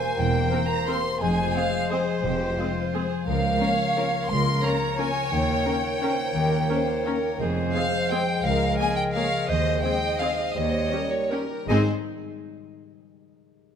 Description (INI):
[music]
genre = classical, orchestral ballroom waltz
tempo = 152-190 BPM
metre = 3/4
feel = rubato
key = Ab major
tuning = A4 = 440 Hz
[part]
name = rich chamber violin section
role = melody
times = 0.0-11.9 s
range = Bb4 to C6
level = -30 LUFS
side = left 1 dB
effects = none
[part]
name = clear clarinet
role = second line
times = 0.0-11.8 s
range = Bb4 to Eb5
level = -34 LUFS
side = left 1 dB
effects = none
[part]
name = hollow concert flute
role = second line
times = 0.0-11.9 s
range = Ab4 to C6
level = -30 LUFS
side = equal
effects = none
[part]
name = warm chamber violin section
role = second line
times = 0.0-11.9 s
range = Eb4 to Eb5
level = -32 LUFS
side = right 2 dB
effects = none
[part]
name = mellow bassoon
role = accompaniment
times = 0.0-11.8 s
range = G3 to Bb3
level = -32 LUFS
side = right 1 dB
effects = none
[part]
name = concert harp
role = arpeggios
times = 0.0-11.9 s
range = Ab2 to Eb5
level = -31 LUFS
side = left 8 dB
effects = none
[part]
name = rich chamber double bass section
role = bass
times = 0.2-11.9 s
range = E1 to Eb2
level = -31 LUFS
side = right 3 dB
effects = none
[part]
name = warm studio cello section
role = bass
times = 0.2-11.9 s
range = Db2 to Ab2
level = -30 LUFS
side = right 3 dB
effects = none
[part]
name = rich studio viola section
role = accompaniment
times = 0.5-11.9 s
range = Ab3 to Bb4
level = -33 LUFS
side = equal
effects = none
[part]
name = mellow French horn section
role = sustained chords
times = 0.5-11.8 s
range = G3 to Eb4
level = -34 LUFS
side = left 3 dB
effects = none
[sound]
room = moderate scoring stage reverb, RT60 1.9 s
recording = none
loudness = -22 LUFS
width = side -8 dB against mid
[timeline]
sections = 0.0-11.7 A section; 11.7-12.8 B section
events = none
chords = 0.0 C7/E; 1.2 Fm; 3.3 Bbm/Db; 5.3 Eb7; 7.4 Fm; 8.4 Bbm7/Db; 9.5 Ab/Eb; 10.5 Eb7; 11.7 Ab